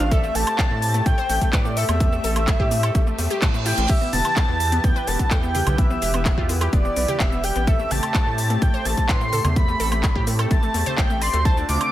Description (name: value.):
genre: progressive house.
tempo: 127 BPM.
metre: 4/4.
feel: straight.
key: A minor.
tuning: A4 = 442 Hz.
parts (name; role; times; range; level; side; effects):
warm velvety synth lead; melody; 0.0-11.9 s; D5 to D6; -26 LUFS; equal; chorus, tape echo.
airy dreamy lead; second line; 0.0-11.9 s; D6 to D7; -30 LUFS; equal; chorus, sidechain pumping, dub echo.
warm analog pad; sustained chords; 0.0-11.9 s; D3 to B4; -32 LUFS; left 1 dB; chorus, tremolo, sidechain pumping.
wide unison pluck; arpeggios; 0.0-11.8 s; A3 to D5; -28 LUFS; equal; vintage 12-bit sampler grit, sidechain pumping, dub echo.
round analog bass; bass; 0.0-11.8 s; E1 to A2; -24 LUFS; equal; sidechain pumping.
pop drum kit; drums; 0.0-11.9 s; crash cymbal, handclaps, hi-hat, shaker, woodblock; -28 LUFS; equal; studio reverb.
electronic kick drum; drums; 0.1-11.5 s; none; -20 LUFS; equal; studio reverb.
reverse cymbal; sound effects; 3.2-3.9 s; none; -30 LUFS; right 7 dB; none.
congas and cowbell; percussion; 4.1-11.8 s; none; -31 LUFS; right 1 dB; sidechain pumping on perc.
room: little or no reverb.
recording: none.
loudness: -18 LUFS.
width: side -13 dB against mid.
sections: 0.0-11.9 A section.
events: reverse cymbal 3.2-3.9.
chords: 0.1 Am7; 3.9 Em; 7.7 Am7.